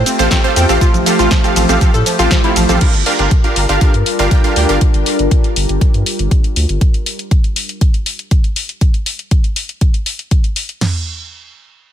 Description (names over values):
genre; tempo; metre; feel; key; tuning
progressive house; 120 BPM; 4/4; straight; G minor; A4 = 441 Hz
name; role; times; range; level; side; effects
evolving wavetable pad; sustained chords; 0.0-6.8 s; G3 to Bb4; -20 LUFS; left 1 dB; chorus, built-in reverb, sidechain pumping
glassy wavetable pluck; arpeggios; 0.0-2.8 s; F3 to C5; -18 LUFS; equal; chorus, cassette tape, sidechain pumping, ping-pong delay
saturated sub bass; bass; 0.0-6.8 s; G1 to A2; -16 LUFS; equal; sidechain pumping
house drum kit; drums; 0.1-10.8 s; cabasa, crash cymbal, hi-hat, ride cymbal, snare drum; -19 LUFS; left 1 dB; sidechain pumping on hats, sidechain pumping on perc, sidechain pumping on cymbals
supersaw stab; stabs; 0.2-4.8 s; C4 to G5; -17 LUFS; right 2 dB; sidechain pumping, ping-pong delay
house drum kit; drums; 0.3-10.9 s; crash cymbal, kick drum, snare drum, toms; -13 LUFS; equal; none
room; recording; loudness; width
digital ambience; none; -11 LUFS; side -10 dB against mid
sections
0.0-2.8 A section; 2.8-10.8 B section; 10.8-11.9 C section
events
drop 0.0-2.8; filter sweep on ambient pad 2.8-6.8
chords
0.0 Fadd9/A; 2.8 Gm7; 6.8 N.C.